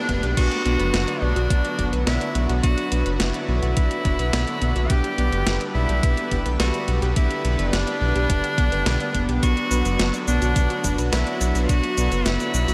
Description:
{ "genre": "synthwave", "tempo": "106 BPM", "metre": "4/4", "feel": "straight", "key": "B minor", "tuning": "A4 = 437 Hz", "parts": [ { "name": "edgy tenor saxophone", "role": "melody", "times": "0.0-12.7 s", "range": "D4 to G4", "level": "-29 LUFS", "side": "equal", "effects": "analog delay" }, { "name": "soft supersaw", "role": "sustained chords", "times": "0.0-12.7 s", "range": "D3 to B4", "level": "-32 LUFS", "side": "equal", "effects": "phaser, sidechain pumping" }, { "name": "chorused polysynth", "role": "stabs", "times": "0.0-12.7 s", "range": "D4 to G5", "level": "-34 LUFS", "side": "equal", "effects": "analog delay" }, { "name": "unison pluck", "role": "arpeggios", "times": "0.1-12.7 s", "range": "B3 to D5", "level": "-33 LUFS", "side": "equal", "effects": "analog delay" }, { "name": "round analog bass", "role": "bass", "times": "0.1-12.7 s", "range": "F#1 to B1", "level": "-25 LUFS", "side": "equal", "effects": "sidechain pumping" }, { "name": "clean 12-bit digital drum machine", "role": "drums", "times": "0.1-12.7 s", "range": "cabasa, crash cymbal, hi-hat, snare drum", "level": "-31 LUFS", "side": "equal", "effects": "overdrive" }, { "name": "electronic kick drum", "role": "drums", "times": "0.1-11.8 s", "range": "none", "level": "-25 LUFS", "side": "equal", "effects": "overdrive" } ], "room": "wet huge ambient reverb, RT60 8.4 s", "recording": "dreamy mix soaked in reverb", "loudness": "-22 LUFS", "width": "mono", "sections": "0.4-12.7 A section", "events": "none", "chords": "0.4 Bm; 4.9 G; 9.4 Bm", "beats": "| 0.37 0.94 1.50 2.07 | 2.64 3.20 3.77 4.33 | 4.90 5.47 6.03 6.60 | 7.16 7.73 8.30 8.86 | 9.43 9.99 10.56 11.13 | 11.69 12.26" }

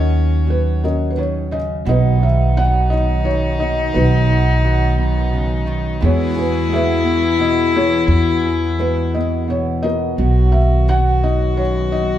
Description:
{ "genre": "acoustic folk-pop ballad", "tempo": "58 BPM (dotted quarters)", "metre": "6/8", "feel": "straight", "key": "B major", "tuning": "A4 = 443 Hz", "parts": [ { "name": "felt-muted upright piano", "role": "melody", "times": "0.0-12.2 s", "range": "C#4 to F#5", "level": "-22 LUFS", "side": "equal", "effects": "none" }, { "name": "warm cello", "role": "second line", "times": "0.0-12.2 s", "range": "C#4 to F#4", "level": "-21 LUFS", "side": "left 4 dB", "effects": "none" }, { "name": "nylon-string guitar", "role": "accompaniment", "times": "0.0-12.2 s", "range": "F#2 to A#4", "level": "-24 LUFS", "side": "right 4 dB", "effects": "none" }, { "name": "upright bass", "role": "bass", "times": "0.0-12.2 s", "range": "B1 to E2", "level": "-17 LUFS", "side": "equal", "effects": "none" }, { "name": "brassy analog pad", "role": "sustained chords", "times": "1.9-12.2 s", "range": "D#3 to G#4", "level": "-27 LUFS", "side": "equal", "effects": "chorus" } ], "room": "moderate large studio reverb, RT60 1.2 s", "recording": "band playing live in one room", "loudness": "-14 LUFS", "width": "side -11 dB against mid", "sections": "0.0-1.9 A section; 1.9-12.2 A section", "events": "none", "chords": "0.0 D#m7; 1.9 B; 6.0 Eadd9; 10.2 Bmaj7", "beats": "0.82 | 1.88 2.92 | 3.96 4.99 | 6.03 7.06 | 8.09 9.14 | 10.19 11.23" }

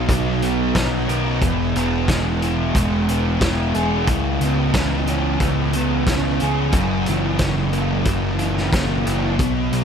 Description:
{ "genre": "rock, shoegaze and dream pop", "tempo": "90 BPM", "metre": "4/4", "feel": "straight", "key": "unclear", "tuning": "A4 = 444 Hz", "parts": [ { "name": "thick fuzz guitar", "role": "riff", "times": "0.0-9.8 s", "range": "F#2 to A#4", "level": "-20 LUFS", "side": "equal", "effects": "distortion, analog chorus" }, { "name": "fuzz picked electric bass", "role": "bass", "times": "0.0-9.8 s", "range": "E1 to C#2", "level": "-22 LUFS", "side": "equal", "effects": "overdrive" }, { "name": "loose indie drum kit", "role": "drums", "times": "0.1-9.8 s", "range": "hi-hat, kick drum, snare drum", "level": "-23 LUFS", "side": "equal", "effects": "none" } ], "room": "moderate plate reverb, RT60 2.3 s", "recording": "dreamy mix soaked in reverb", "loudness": "-17 LUFS", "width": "side -7 dB against mid", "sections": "0.0-9.8 A section", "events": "none", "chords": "0.0 Bmaj7; 1.4 E; 4.1 C#m7; 6.7 F#7", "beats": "0.09 0.75 | 1.42 2.09 2.75 3.42 | 4.08 4.75 5.41 6.08 | 6.74 7.41 8.07 8.73 | 9.40" }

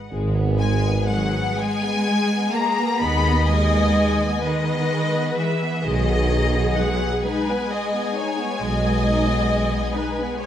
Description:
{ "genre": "classical, slow romantic movement for symphony orchestra", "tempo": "40-45 BPM (dotted quarters)", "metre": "12/8", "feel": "rubato", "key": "G# minor", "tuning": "A4 = 438 Hz", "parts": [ { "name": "rich studio violin section", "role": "melody", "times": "0.0-10.5 s", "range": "D#5 to B5", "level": "-26 LUFS", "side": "left 4 dB", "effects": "none" }, { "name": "warm studio violin section", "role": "second line", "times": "0.1-10.5 s", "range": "G#3 to G#4", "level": "-28 LUFS", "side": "left 4 dB", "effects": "none" }, { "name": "mellow tuba", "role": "bass", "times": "0.1-9.7 s", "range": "G#1 to D#2", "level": "-26 LUFS", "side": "right 2 dB", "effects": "none" }, { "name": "rich studio double bass section", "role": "bass", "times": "0.1-9.7 s", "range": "G#1 to D#2", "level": "-24 LUFS", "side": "right 1 dB", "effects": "none" }, { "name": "rich studio cello section", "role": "bass", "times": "0.6-10.5 s", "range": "D#3 to B3", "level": "-25 LUFS", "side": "right 1 dB", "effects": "none" }, { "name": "rich studio viola section", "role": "accompaniment", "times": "3.0-10.5 s", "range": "G#4 to D#5", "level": "-25 LUFS", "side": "equal", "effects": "none" } ], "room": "moderate scoring stage reverb, RT60 2.0 s", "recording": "dark, warm production", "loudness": "-19 LUFS", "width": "side -10 dB against mid", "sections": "0.1-10.5 A section", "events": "none", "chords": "0.1 G#m; 5.8 G#m/B", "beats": "| 0.11 1.57 3.00 4.44 | 5.84 7.25 8.60 9.95" }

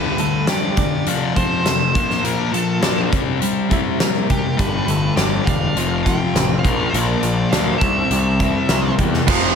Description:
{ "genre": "quiet-loud alternative rock", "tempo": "102 BPM", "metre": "4/4", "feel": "straight", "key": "unclear", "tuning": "A4 = 444 Hz", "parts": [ { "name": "nasal lead guitar with a parked wah", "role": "melody", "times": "0.0-9.6 s", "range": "G4 to G5", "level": "-24 LUFS", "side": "right 2 dB", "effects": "overdrive, analog delay" }, { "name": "twelve-string electric guitar", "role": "arpeggios", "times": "0.0-9.3 s", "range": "Bb2 to G4", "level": "-25 LUFS", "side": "right 10 dB", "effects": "tremolo" }, { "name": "thick fuzz guitar", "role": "riff", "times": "0.0-9.6 s", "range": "F2 to C4", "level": "-21 LUFS", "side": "left 9 dB", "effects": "distortion" }, { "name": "huge arena drum kit", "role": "drums", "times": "0.2-9.4 s", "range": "crash cymbal, hi-hat, kick drum, snare drum", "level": "-20 LUFS", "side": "equal", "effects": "none" }, { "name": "fuzz picked electric bass", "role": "bass", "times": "4.6-9.6 s", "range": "E1 to E2", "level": "-22 LUFS", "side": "right 1 dB", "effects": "overdrive" }, { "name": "bright tonewheel organ", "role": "sustained chords", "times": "9.3-9.6 s", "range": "F3 to C5", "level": "-29 LUFS", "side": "left 2 dB", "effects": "none" }, { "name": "distorted electric guitar", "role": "riff", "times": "9.3-9.6 s", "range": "F2 to F3", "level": "-18 LUFS", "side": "right 15 dB", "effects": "overdrive" } ], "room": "light reverb, small room ambience", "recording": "none", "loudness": "-16 LUFS", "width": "side -6 dB against mid", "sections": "0.0-9.3 A section", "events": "none", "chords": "0.0 Gadd9; 1.1 F; 2.0 Bbmaj7; 3.1 C7; 4.6 Gadd9; 5.8 Fadd9; 6.6 Bb; 7.8 C7", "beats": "0.49 1.07 1.66 | 2.25 2.83 3.42 4.00 | 4.59 5.18 5.76 6.35 | 6.94 7.52 8.11 8.69 | 9.28" }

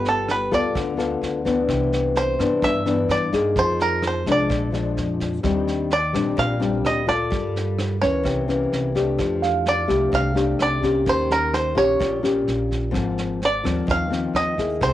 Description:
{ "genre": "bossa nova", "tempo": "128 BPM", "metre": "4/4", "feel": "straight", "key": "C minor", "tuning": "A4 = 440 Hz", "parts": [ { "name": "bluegrass banjo", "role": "melody", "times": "0.0-14.9 s", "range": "A4 to F5", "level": "-22 LUFS", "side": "right 2 dB", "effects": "cassette tape" }, { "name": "nylon-string guitar", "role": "accompaniment", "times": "0.0-14.9 s", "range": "G2 to A4", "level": "-22 LUFS", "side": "left 3 dB", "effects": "plate reverb" }, { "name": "upright bass", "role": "bass", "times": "0.0-14.9 s", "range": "G1 to G2", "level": "-28 LUFS", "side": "right 2 dB", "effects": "none" }, { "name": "vintage brush drum kit", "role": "drums", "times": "0.0-14.9 s", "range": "kick drum, rim click, snare drum", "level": "-31 LUFS", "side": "right 2 dB", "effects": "cassette tape" }, { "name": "warm concert grand piano", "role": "accompaniment", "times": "9.4-11.1 s", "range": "F5", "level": "-28 LUFS", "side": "right 9 dB", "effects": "none" } ], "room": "moderate booth ambience, RT60 0.3 s", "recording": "home recording on cassette", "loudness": "-19 LUFS", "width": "side -13 dB against mid", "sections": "0.0-14.9 A section", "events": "none", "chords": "0.0 G9; 1.7 Cmaj9; 3.6 Fm7; 4.5 Bb7; 5.4 Ebmaj13; 7.3 Gm9; 8.3 C7b9; 9.2 F69; 11.1 Eb7; 12.9 Ab69", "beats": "0.28 0.74 1.21 | 1.68 2.15 2.62 3.09 | 3.56 4.03 4.50 4.97 | 5.44 5.91 6.38 6.85 | 7.32 7.78 8.25 8.72 | 9.19 9.66 10.13 10.60 | 11.06 11.53 12.00 12.47 | 12.94 13.41 13.88 14.34 | 14.81" }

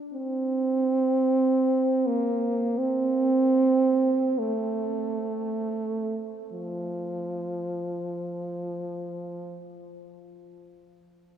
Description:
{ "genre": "classical, free, expressive piece for unaccompanied French horn", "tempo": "free time", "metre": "none", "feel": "none", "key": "F major", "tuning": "A4 = 441 Hz", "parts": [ { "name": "warm French horn", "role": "solo", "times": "0.1-9.7 s", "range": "F3 to C4", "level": "-24 LUFS", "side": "right 2 dB", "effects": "none" } ], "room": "wet cathedral reverb, RT60 4.8 s", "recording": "none", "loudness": "-24 LUFS", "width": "side -9 dB against mid", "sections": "0.0-6.5 A section; 6.5-11.4 B section", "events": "slowing down 0.0-6.5", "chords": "none", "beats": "free time" }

